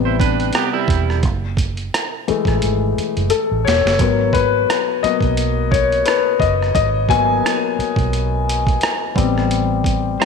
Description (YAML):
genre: R&B, neo-soul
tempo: 87 BPM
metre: 4/4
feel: swing 55% on 16ths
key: G# phrygian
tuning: A4 = 442 Hz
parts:
  - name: warm grand piano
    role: accompaniment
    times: 0.0-10.2 s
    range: C3 to G#5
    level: -17 LUFS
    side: left 8 dB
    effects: none
  - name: vintage muted fingered electric bass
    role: bass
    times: 0.0-10.2 s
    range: E1 to B1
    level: -20 LUFS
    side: right 3 dB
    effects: none
  - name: electric guitar at the edge of break-up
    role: second line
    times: 0.1-1.2, 10.2 s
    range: G3 to C5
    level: -21 LUFS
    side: right 15 dB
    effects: analog chorus
  - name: boom bap sampler-style drum kit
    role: drums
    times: 0.2-10.2 s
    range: hi-hat, kick drum, rim click, snare drum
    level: -21 LUFS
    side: right 3 dB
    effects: none
room: moderate echo chamber reverb, RT60 1.8 s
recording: 1960s-style stereo with parts hard left and right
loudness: -15 LUFS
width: side -5 dB against mid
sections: 0.0-10.2 A section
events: grand piano solo 0.0-10.2; drum fill 2.6-4.0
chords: 0.0 Am9; 1.2 F#m9; 4.0 G#m9; 9.2 Am9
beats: 0.54 | 1.23 1.92 2.61 3.30 | 3.99 4.67 5.37 6.05 | 6.74 7.43 8.12 8.81 | 9.50 10.19